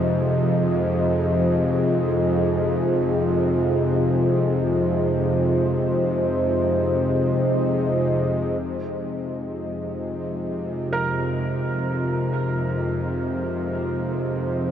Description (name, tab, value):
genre	dark ambient drone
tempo	free time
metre	none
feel	none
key	F minor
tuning	A4 = 441 Hz
part	dark analog pad	sustained chords	0.0-14.7 s	F4 to Eb5	-24 LUFS	left 1 dB	chorus
part	bowed-like drone	drone	0.0-14.7 s	F2 to C3	-23 LUFS	equal	built-in reverb
part	clear grand piano	arpeggios	10.9-14.7 s	Bb4	-30 LUFS	right 3 dB	diffuse ambient delay
room	moderate huge ambient reverb, RT60 8.8 s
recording	none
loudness	-20 LUFS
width	side -9 dB against mid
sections	0.0-8.6 A section; 8.6-14.7 B section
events	none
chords	0.0 F5